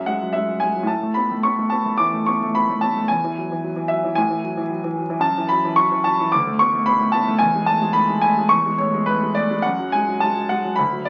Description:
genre	classical, romantic character piece for solo piano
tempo	110 BPM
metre	4/4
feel	rubato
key	unclear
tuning	A4 = 440 Hz
part	clear concert grand piano	solo	0.0-11.1 s	D2 to D6	-20 LUFS	equal	none
room	moderate large studio reverb, RT60 1.2 s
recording	very old 78 rpm record, vinyl crackle, nothing above 7.6 kHz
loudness	-20 LUFS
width	mono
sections	0.0-11.1 A section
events	none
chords	0.0 Eadd9/F#; 0.9 A5; 3.1 E; 4.2 A5; 5.2 F#m7; 6.3 D5; 7.4 E; 9.6 F#madd9

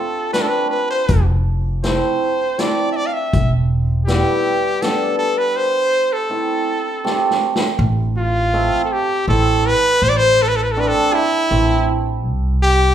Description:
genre	klezmer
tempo	81 BPM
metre	3/4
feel	straight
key	A minor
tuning	A4 = 439 Hz
part	bright cornet	melody	0.0-12.9 s	E4 to F5	-18 LUFS	equal	none
part	hammered dulcimer	accompaniment	0.3-11.9 s	G3 to E5	-22 LUFS	right 2 dB	none
part	street-band drum kit	drums	0.3-7.7 s	hi-hat, kick drum, snare drum	-22 LUFS	left 2 dB	none
part	upright bass	bass	1.1-4.2, 7.8-12.9 s	E1 to C2	-18 LUFS	equal	none
room	moderate large studio reverb, RT60 1.1 s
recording	band playing live in one room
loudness	-15 LUFS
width	side -10 dB against mid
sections	0.0-7.8 A section; 7.8-12.9 B section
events	drum fill 7.1-7.8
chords	0.0 F; 3.3 Em; 5.6 Am; 12.2 C5

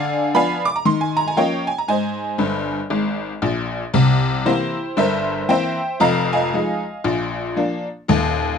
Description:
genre	jazz, stride piano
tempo	116 BPM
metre	4/4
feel	swing 60% on 8ths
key	unclear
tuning	A4 = 440 Hz
part	tack piano	solo	0.0-8.6 s	Eb1 to D6	-18 LUFS	left 1 dB	none
room	moderate club ambience, RT60 0.5 s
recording	close, detailed microphones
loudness	-18 LUFS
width	side -6 dB against mid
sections	0.0-4.0 A section; 4.0-8.6 B section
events	honky-tonk piano fill 2.4-4.0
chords	0.0 Ddim7; 0.9 Ebsus2; 1.9 Ab; 4.0 C7; 6.0 Fm7; 7.0 Bb7; 8.1 N.C.

